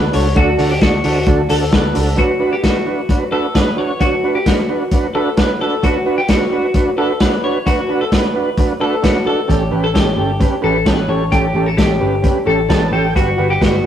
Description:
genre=jangly indie pop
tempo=131 BPM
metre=4/4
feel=straight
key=D major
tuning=A4 = 440 Hz
part: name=fingerpicked old ladder-braced acoustic guitar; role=accompaniment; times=0.0-13.9 s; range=A2 to B4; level=-25 LUFS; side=right 3 dB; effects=none
part: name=overdriven combo organ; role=accompaniment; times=0.0-13.9 s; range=C#4 to A5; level=-19 LUFS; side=right 4 dB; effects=none
part: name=twelve-string electric guitar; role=arpeggios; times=0.0-13.9 s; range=F#4 to C#5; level=-19 LUFS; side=left 3 dB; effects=none
part: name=vintage muted picked electric bass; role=bass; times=0.0-2.1, 9.5-13.8 s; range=G1 to D2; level=-19 LUFS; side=left 1 dB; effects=none
part: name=vintage drum kit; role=drums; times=0.1-13.7 s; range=hi-hat, kick drum, snare drum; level=-16 LUFS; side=left 1 dB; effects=none
room=light reverb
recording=rough rehearsal-room recording, tube saturation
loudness=-13 LUFS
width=side -10 dB against mid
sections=0.0-2.2 A section; 2.2-13.9 B section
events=transistor combo organ fill 12.5-13.2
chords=0.0 D; 2.2 D6; 9.5 A7; 13.2 Gmaj7

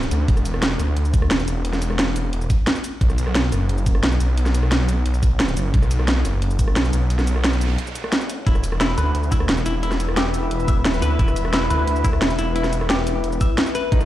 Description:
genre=dark technical drum and bass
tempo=176 BPM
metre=4/4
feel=straight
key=unclear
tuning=A4 = 440 Hz
part: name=wide detuned saw bass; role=bass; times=0.0-14.1 s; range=E1 to D2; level=-20 LUFS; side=equal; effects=chorus
part: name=drum and bass drum kit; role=drums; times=0.0-14.1 s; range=hi-hat, rim click, shaker, snare drum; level=-23 LUFS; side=equal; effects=overdrive
part: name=electronic kick drum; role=drums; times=0.3-14.0 s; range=none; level=-18 LUFS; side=equal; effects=none
part: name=noise sweep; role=sound effects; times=7.3-8.5 s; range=none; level=-34 LUFS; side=right 3 dB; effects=none
part: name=deep dark ambient pad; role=sustained chords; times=9.2-14.1 s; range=E4 to E5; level=-26 LUFS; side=left 3 dB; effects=chorus, built-in reverb, sidechain pumping
part: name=clean electric guitar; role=arpeggios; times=8.5-14.0 s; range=D#4 to E5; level=-27 LUFS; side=left 2 dB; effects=phaser, sidechain pumping, digital delay
room=digital ambience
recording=played on a big sound system in a bare room, large studio reverb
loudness=-18 LUFS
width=side -14 dB against mid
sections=0.0-14.1 A section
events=noise sweep 7.3-8.5; break 7.8-8.5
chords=0.0 Dsus2/E; 3.0 B5; 8.5 E5

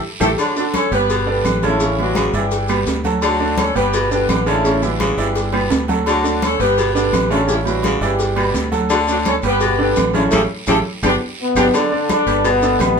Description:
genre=latin, salsa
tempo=169 BPM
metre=4/4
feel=straight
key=D major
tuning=A4 = 443 Hz
part: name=mellow horn section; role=melody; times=0.2-11.7 s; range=F#3 to C#5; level=-20 LUFS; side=equal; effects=none
part: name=bright baby grand piano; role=accompaniment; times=0.2-13.0 s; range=C#3 to D5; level=-21 LUFS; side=right 3 dB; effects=none
part: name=fingered electric bass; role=bass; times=0.2-13.0 s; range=G1 to D2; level=-23 LUFS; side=equal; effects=none
part: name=bongos and cowbell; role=percussion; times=0.2-13.0 s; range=none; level=-27 LUFS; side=left 3 dB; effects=none
part: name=claves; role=percussion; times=0.2-13.0 s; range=none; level=-33 LUFS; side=left 1 dB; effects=none
part: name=congas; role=percussion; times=0.2-13.0 s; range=none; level=-25 LUFS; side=left 1 dB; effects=none
part: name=guiro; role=percussion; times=0.2-13.0 s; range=none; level=-33 LUFS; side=right 3 dB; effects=none
part: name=maracas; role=percussion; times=0.2-13.0 s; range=none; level=-33 LUFS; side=left 5 dB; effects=none
part: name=timbales and agogo bells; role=percussion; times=0.2-13.0 s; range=none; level=-26 LUFS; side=right 4 dB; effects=none
part: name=raspy baritone saxophone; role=second line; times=0.4-13.0 s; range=B2 to D3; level=-22 LUFS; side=left 3 dB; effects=none
part: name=mellow trombone section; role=melody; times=11.4-13.0 s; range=B2 to D4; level=-16 LUFS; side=left 2 dB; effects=none
room=wet small room reverb, RT60 0.5 s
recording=band playing live in one room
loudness=-15 LUFS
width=side -6 dB against mid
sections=0.4-11.7 A section; 11.7-13.0 B section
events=drum fill 0.0-0.4, 5.5-6.1, 11.0-11.7; band accent 0.0-0.4, 10.3-11.7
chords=0.4 D5; 1.1 G; 1.8 A7; 2.5 G; 3.2 D; 3.9 G; 4.6 A7; 5.4 G; 6.1 D; 6.8 G; 7.5 A7; 8.2 G; 8.9 D; 9.6 G; 10.3 A7; 11.0 G; 11.7 D; 12.4 G

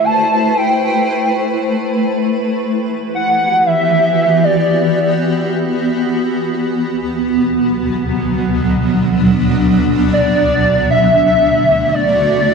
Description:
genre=IDM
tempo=free time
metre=none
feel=none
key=A dorian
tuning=A4 = 440 Hz
part: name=warbly nostalgic lead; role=melody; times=0.0-5.2, 10.1-12.5 s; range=D5 to A5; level=-14 LUFS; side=equal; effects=ensemble chorus, ping-pong delay
part: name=granular cloud pad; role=sustained chords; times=0.0-12.5 s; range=D2 to C5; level=-14 LUFS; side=equal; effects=built-in reverb
room=moderate lush hall reverb, RT60 2.6 s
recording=dark, warm production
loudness=-12 LUFS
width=side -5 dB against mid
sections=0.0-12.5 A section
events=none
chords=0.0 Am7; 2.6 Em; 6.8 Bm/D; 10.9 D

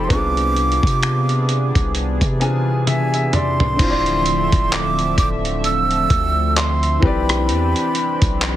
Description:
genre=contemporary R&B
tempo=65 BPM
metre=4/4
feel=swing 58% on 16ths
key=unclear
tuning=A4 = 439 Hz
part: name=breathy mellow jazz flute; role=melody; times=0.0-8.6 s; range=G#5 to E6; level=-21 LUFS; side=right 2 dB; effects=digital delay
part: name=clear baby grand piano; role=accompaniment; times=0.0-8.6 s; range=C3 to G#5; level=-25 LUFS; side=left 3 dB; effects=none
part: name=chorused pulse-width pad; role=sustained chords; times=0.0-8.6 s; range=C3 to E5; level=-24 LUFS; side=right 1 dB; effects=sidechain pumping
part: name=long sustained 808-style bass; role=bass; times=0.0-8.6 s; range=D1 to C3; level=-21 LUFS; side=equal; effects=none
part: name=dusty soul sampler-style drum kit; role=drums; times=0.1-8.6 s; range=crash cymbal, finger snaps, handclaps, hi-hat, kick drum, rim click, toms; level=-20 LUFS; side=equal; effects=vintage 12-bit sampler grit
room=little or no reverb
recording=heavily compressed radio sound, multiband compression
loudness=-15 LUFS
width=side -13 dB against mid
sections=0.0-3.8 A section; 3.8-8.6 B section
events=grand piano fill 1.9-3.8; drum fill 2.9-3.8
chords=0.1 E7b9/C; 3.8 Dm9; 7.0 Cmaj7

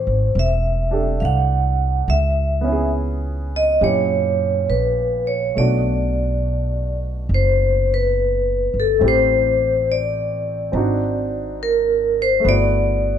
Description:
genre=jazz ballad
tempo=69 BPM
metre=4/4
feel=swing 67% on 8ths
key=unclear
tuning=A4 = 440 Hz
part: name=vibraphone with medium hard mallets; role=melody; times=0.0-13.2 s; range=A4 to F#5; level=-19 LUFS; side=left 1 dB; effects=plate reverb
part: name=warm baby grand piano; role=accompaniment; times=0.0-13.2 s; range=A#2 to A4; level=-26 LUFS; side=right 3 dB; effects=none
part: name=upright bass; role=bass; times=0.0-13.2 s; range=E1 to F#2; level=-21 LUFS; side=right 1 dB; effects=none
room=light reverb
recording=dark, warm production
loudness=-16 LUFS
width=side -9 dB against mid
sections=0.0-13.2 A section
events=none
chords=0.0 Am7; 2.1 C#m7; 3.8 F#7b9; 5.6 Bm7; 9.0 Am7; 10.7 G#7#11; 12.5 Gmaj13

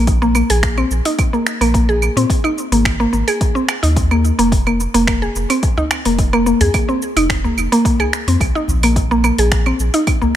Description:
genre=organic downtempo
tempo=108 BPM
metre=4/4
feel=straight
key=unclear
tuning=A4 = 438 Hz
part: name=mallet-like synth pluck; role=arpeggios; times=0.0-10.4 s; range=Bb3 to Ab4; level=-16 LUFS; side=equal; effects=chorus, tape echo
part: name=warm sub bass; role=bass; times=0.0-9.9 s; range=F1 to Bb2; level=-17 LUFS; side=equal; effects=none
part: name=deep house drum kit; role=drums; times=0.1-10.3 s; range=cabasa, claves, finger snaps, hi-hat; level=-21 LUFS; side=right 2 dB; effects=overdrive
part: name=electronic kick drum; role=drums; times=0.1-10.2 s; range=none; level=-18 LUFS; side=equal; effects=overdrive
part: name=udu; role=percussion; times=5.8-10.3 s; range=none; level=-21 LUFS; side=equal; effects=none
room=light reverb, digital ambience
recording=none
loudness=-13 LUFS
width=side -11 dB against mid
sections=0.0-10.4 A section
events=none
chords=0.1 Bb7sus2; 2.3 Fm7; 9.0 Bb7(no3)

